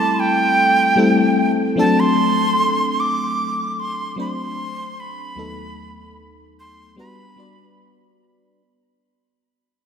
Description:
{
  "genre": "R&B",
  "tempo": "75 BPM",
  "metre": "4/4",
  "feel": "straight",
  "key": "unclear",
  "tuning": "A4 = 439 Hz",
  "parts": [
    { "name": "breathy bright jazz flute", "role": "melody", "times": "0.0-7.7 s", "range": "G5 to D6", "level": "-19 LUFS", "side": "right 2 dB", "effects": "none" },
    { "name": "FM electric piano", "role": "accompaniment", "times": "0.0-8.6 s", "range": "D#2 to D5", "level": "-19 LUFS", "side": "left 3 dB", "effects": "chorus" }
  ],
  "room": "wet lush hall reverb, RT60 2.9 s",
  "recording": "dreamy mix soaked in reverb",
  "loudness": "-15 LUFS",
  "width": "side -7 dB against mid",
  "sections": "0.0-8.6 A section",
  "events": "fade-out 0.0-8.6",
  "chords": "0.0 Am7; 1.8 D7; 5.4 B7/D#; 7.0 Gmaj7"
}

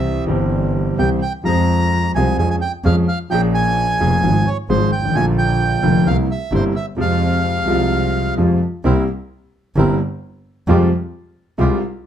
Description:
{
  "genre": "tango",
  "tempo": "130 BPM",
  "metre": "4/4",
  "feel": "rubato",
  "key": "F harmonic minor",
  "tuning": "A4 = 439 Hz",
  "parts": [
    { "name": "bandoneon", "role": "melody", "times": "0.0-8.3 s", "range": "C5 to Bb5", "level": "-21 LUFS", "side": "right 2 dB", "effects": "none" },
    { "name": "warm concert grand piano", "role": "accompaniment", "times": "0.0-11.8 s", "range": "F1 to Ab4", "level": "-18 LUFS", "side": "left 1 dB", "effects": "none" },
    { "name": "rich double bass", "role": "bass", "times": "0.0-11.8 s", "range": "F1 to F2", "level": "-20 LUFS", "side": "right 1 dB", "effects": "none" },
    { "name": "bandoneon", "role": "stabs", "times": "8.8-11.8 s", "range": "Ab3 to Bb4", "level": "-25 LUFS", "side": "right 3 dB", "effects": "none" }
  ],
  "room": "light reverb",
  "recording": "close, detailed microphones",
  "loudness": "-15 LUFS",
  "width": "side -10 dB against mid",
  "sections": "0.0-8.8 A section; 8.8-12.1 B section",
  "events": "none",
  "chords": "0.0 C; 1.5 Fm; 2.4 Db/F; 3.3 Bbm7; 4.2 Fm/Ab; 5.2 Bb; 6.1 C7; 7.0 Fm; 8.8 C7; 10.7 Fmadd9"
}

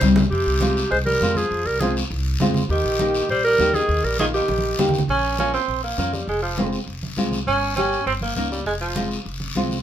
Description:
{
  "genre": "latin, cumbia",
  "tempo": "201 BPM",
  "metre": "4/4",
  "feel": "straight",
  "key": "F minor",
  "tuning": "A4 = 440 Hz",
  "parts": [
    { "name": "clear clarinet", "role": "melody", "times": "0.0-4.9 s", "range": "G4 to C5", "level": "-21 LUFS", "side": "right 1 dB", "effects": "none" },
    { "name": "warm tenor saxophone", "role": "second line", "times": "0.0-9.1 s", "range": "C3 to Db4", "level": "-24 LUFS", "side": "right 2 dB", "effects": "none" },
    { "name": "nylon-string guitar", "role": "accompaniment", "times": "0.0-9.8 s", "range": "G3 to G4", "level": "-23 LUFS", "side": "left 2 dB", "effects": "none" },
    { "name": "upright bass", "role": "bass", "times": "0.0-9.8 s", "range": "F1 to F2", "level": "-26 LUFS", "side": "equal", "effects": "none" },
    { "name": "congas", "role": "percussion", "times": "0.0-9.8 s", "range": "none", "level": "-28 LUFS", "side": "right 3 dB", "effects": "none" },
    { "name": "guiro", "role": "percussion", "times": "0.0-9.8 s", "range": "none", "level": "-32 LUFS", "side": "left 4 dB", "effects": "none" }
  ],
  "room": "moderate studio reverb, RT60 0.6 s",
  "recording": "minimal, uncompressed stereo recording",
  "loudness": "-19 LUFS",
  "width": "side -10 dB against mid",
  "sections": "0.0-5.1 A section; 5.1-9.8 B section",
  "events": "drum fill 0.0-0.3, 4.5-5.1; tenor saxophone solo 5.1-9.8",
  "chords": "0.3 Fmadd9; 2.7 Eb; 5.1 Bbm; 6.3 Fm; 7.5 Gdim; 8.7 Fm"
}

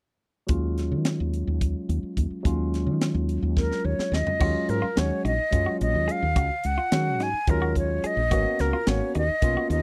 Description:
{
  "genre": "electric jazz fusion",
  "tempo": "215 BPM (eighths)",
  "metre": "7/8",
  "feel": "straight",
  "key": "Eb minor",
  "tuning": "A4 = 442 Hz",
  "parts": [
    { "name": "barky tine electric piano", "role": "accompaniment", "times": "0.5-9.8 s", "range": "Gb3 to Gb4", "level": "-32 LUFS", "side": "equal", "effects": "overdrive, phaser" },
    { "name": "woody fretless electric bass", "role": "bass", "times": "0.5-9.8 s", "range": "Ab1 to Eb3", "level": "-28 LUFS", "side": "equal", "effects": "none" },
    { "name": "crisp fusion drum kit", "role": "drums", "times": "0.5-9.8 s", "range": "crash cymbal, hi-hat, kick drum, snare drum, toms", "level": "-29 LUFS", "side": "equal", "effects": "none" },
    { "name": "breathy concert flute", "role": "melody", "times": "3.6-9.8 s", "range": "Bb4 to Ab5", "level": "-29 LUFS", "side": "equal", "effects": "none" },
    { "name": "clean electric guitar", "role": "stabs", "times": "4.4-9.7 s", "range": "Eb4 to Ab4", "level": "-37 LUFS", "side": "equal", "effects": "lush chorus" }
  ],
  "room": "little or no reverb",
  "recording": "dry, close 1970s-style studio recording",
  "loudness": "-25 LUFS",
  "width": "mono",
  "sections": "0.5-4.4 A section; 4.4-9.8 B section",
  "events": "drum fill 3.6-4.4",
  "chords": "0.5 Ebm11; 8.3 Abm11"
}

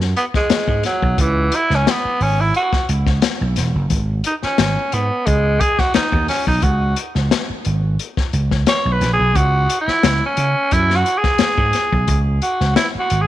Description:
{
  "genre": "funk",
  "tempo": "88 BPM",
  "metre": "4/4",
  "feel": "straight",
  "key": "C# minor",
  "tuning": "A4 = 440 Hz",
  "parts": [
    { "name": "vintage slap bass", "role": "bass", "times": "0.0-13.3 s", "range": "E1 to C#3", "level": "-18 LUFS", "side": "right 1 dB", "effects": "none" },
    { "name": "crunchy breakbeat drum kit", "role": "drums", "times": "0.0-13.3 s", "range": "hi-hat, kick drum, snare drum", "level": "-20 LUFS", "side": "left 3 dB", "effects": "none" },
    { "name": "breathy tenor saxophone", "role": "melody", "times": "0.2-13.3 s", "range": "E3 to C#5", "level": "-18 LUFS", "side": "right 1 dB", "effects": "none" }
  ],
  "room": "light reverb",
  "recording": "1960s-style stereo",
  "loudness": "-15 LUFS",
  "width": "side -13 dB against mid",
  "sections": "0.0-13.3 A section",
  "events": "tenor saxophone solo 0.0-13.3",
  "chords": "0.0 C#7(no3); 3.9 G#5; 6.6 C#5"
}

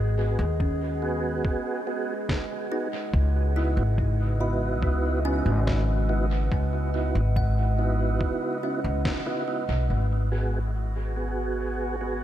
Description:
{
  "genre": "ambient dub",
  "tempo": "71 BPM",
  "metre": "4/4",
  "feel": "straight",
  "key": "C# minor",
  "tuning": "A4 = 443 Hz",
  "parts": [
    { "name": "warbly tape-like pad", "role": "sustained chords", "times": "0.0-12.2 s", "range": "C#3 to F#5", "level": "-33 LUFS", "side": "right 1 dB", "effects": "chorus, built-in reverb" },
    { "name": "upright bass", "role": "bass", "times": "0.0-12.2 s", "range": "G#1 to D#2", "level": "-25 LUFS", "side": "equal", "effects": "none" },
    { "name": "tonewheel organ", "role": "stabs", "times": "0.2-12.2 s", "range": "B3 to G#4", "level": "-31 LUFS", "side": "right 2 dB", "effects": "chorus vibrato, slow rotary speaker, low-pass filter, dub echo" },
    { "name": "kalimba", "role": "arpeggios", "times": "0.6-12.0 s", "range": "C#4 to B5", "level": "-36 LUFS", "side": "left 1 dB", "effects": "dub echo" },
    { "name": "electronic kick drum", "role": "drums", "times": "0.6-9.2 s", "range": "none", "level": "-28 LUFS", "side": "equal", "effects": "studio ambience" },
    { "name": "electronic snare drum", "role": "drums", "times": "2.3-9.2 s", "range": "none", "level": "-36 LUFS", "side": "equal", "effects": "studio ambience, dub echo" },
    { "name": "drifting glass-harmonics texture", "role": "texture", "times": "10.6-12.2 s", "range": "F#4 to F#5", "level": "-38 LUFS", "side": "right 2 dB", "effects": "chorus, built-in reverb" }
  ],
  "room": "light reverb",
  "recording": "echo-heavy mix",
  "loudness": "-23 LUFS",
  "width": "side -12 dB against mid",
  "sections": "0.0-9.9 A section; 9.9-12.2 B section",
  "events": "band accent 9.1-9.5; filter sweep on ambient pad 9.9-12.2",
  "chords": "0.0 G#m7; 3.1 C#m11; 9.9 G#m7"
}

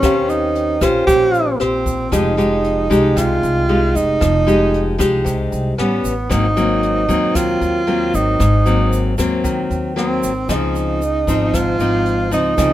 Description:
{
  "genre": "bossa nova",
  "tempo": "115 BPM",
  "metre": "4/4",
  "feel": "straight",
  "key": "F minor",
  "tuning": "A4 = 437 Hz",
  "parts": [
    { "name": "breathy tenor saxophone", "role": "melody", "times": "0.0-12.7 s", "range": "B3 to G4", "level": "-18 LUFS", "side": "right 2 dB", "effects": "none" },
    { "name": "dark baby grand piano", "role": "accompaniment", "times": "0.0-2.1, 10.5-12.7 s", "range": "C4 to F5", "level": "-28 LUFS", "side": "right 1 dB", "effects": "none" },
    { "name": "nylon-string guitar", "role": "accompaniment", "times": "0.0-12.7 s", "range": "Ab2 to C5", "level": "-18 LUFS", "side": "left 2 dB", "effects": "none" },
    { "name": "upright bass", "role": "bass", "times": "0.0-12.7 s", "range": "F1 to Eb2", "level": "-21 LUFS", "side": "equal", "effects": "none" },
    { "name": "jazz brush drum kit", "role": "drums", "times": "0.0-12.7 s", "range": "hi-hat, kick drum, rim click", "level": "-24 LUFS", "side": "equal", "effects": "none" },
    { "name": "egg shaker", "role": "percussion", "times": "0.0-12.7 s", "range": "none", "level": "-34 LUFS", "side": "right 7 dB", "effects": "none" }
  ],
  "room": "little or no reverb",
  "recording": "minimal, uncompressed stereo recording",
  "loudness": "-14 LUFS",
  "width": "side -13 dB against mid",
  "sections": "0.0-2.1 A section; 2.1-12.7 B section",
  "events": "none",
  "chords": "0.0 Eb13; 2.1 Fm9; 5.8 A9; 6.3 Ab9; 10.5 Dbmaj9"
}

